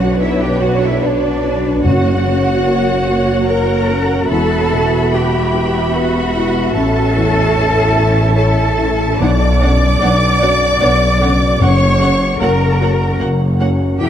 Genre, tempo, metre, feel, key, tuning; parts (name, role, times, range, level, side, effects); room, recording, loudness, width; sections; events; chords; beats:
cinematic, emotional film score for orchestra; 74 BPM; 3/4; rubato; A4 = 439 Hz
warm symphonic violin section; melody; 0.0-14.1 s; D5 to D6; -23 LUFS; right 1 dB
dark symphonic violin section; second line; 0.0-14.1 s; B4 to B5; -21 LUFS; equal
felt-muted upright piano; accompaniment; 0.0-14.1 s; A1 to C#5; -19 LUFS; left 2 dB
warm symphonic viola section; accompaniment; 0.0-14.1 s; D3 to F#4; -22 LUFS; right 3 dB
rich symphonic cello section; bass; 0.0-14.1 s; D4 to D5; -18 LUFS; left 1 dB
rich symphonic double bass section; bass; 0.0-14.1 s; E1 to B1; -17 LUFS; equal
timpani; percussion; 0.0-3.0, 9.2-12.8 s; F#2 to B2; -21 LUFS; equal
wet cathedral reverb, RT60 5.1 s; in a vast, echoing space; -12 LUFS; side -9 dB against mid
0.0-14.1 A section
0.0 Bmadd9; 1.8 F#; 4.3 Emadd9; 6.8 A; 9.2 Bmadd9; 11.6 F#
0.21 1.02 | 1.84 2.66 3.48 | 4.29 5.12 5.95 | 6.75 7.55 8.35 | 9.20 10.01 10.80 | 11.61 12.40 13.20 | 14.01